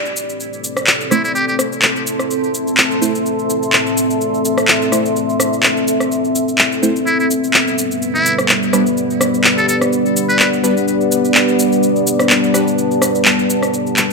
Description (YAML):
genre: bass house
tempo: 126 BPM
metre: 4/4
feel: swing 55% on 16ths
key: A minor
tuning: A4 = 440 Hz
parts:
  - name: dark analog pad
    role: sustained chords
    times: 0.0-14.1 s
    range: G3 to D5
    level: -20 LUFS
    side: right 1 dB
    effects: chorus, phaser
  - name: deep dark ambient pad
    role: texture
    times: 0.0-14.1 s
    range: B3 to C6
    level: -18 LUFS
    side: left 2 dB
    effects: chorus, built-in reverb
  - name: electronic shaker, rim click and handclaps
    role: drums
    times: 0.1-14.1 s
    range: none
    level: -15 LUFS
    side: equal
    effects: overdrive
  - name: trumpet with metal mute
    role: melody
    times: 1.1-1.6, 7.1-10.5 s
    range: E4 to B4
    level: -20 LUFS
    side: equal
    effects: ping-pong delay
  - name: band-passed chord stab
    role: stabs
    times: 1.1-12.6 s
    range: G3 to C5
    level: -21 LUFS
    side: right 2 dB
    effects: phaser, analog chorus, ping-pong delay
room: wet lush hall reverb, RT60 1.9 s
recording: none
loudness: -12 LUFS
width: side -3 dB against mid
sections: 0.0-14.1 A section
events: filter sweep on synth stab 0.0-14.1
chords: 0.0 Am; 7.1 G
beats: 0.40 0.87 | 1.35 1.83 2.30 2.78 | 3.25 3.73 4.21 4.68 | 5.16 5.64 6.11 6.59 | 7.07 7.54 8.02 8.49 | 8.97 9.45 9.92 10.40 | 10.87 11.35 11.83 12.30 | 12.78 13.26 13.73